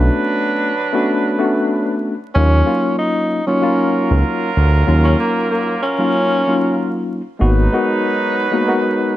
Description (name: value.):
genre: hip hop.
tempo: 95 BPM.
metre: 4/4.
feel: swing 55% on 16ths.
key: Eb minor.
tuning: A4 = 440 Hz.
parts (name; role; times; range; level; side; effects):
mellow tine electric piano; accompaniment; 0.0-9.2 s; Gb3 to Bb4; -18 LUFS; left 2 dB; medium stereo tremolo, cassette tape, high-pass filter, low-pass filter.
clear trumpet section; stabs; 0.0-9.2 s; Gb3 to B4; -21 LUFS; right 3 dB; high-pass filter, low-pass filter, ping-pong delay.
smooth synth bass; bass; 0.0-7.7 s; Ab1 to Eb2; -13 LUFS; equal; none.
mellow tenor saxophone; melody; 2.4-6.9 s; Bb3 to Eb4; -18 LUFS; equal; high-pass filter, low-pass filter, ping-pong delay.
room: light reverb, small room reverb.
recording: vinyl crackle.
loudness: -14 LUFS.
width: side -14 dB against mid.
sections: 0.0-9.2 A section.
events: none.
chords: 0.0 Bm9; 2.4 Ebm9; 7.4 Abm9.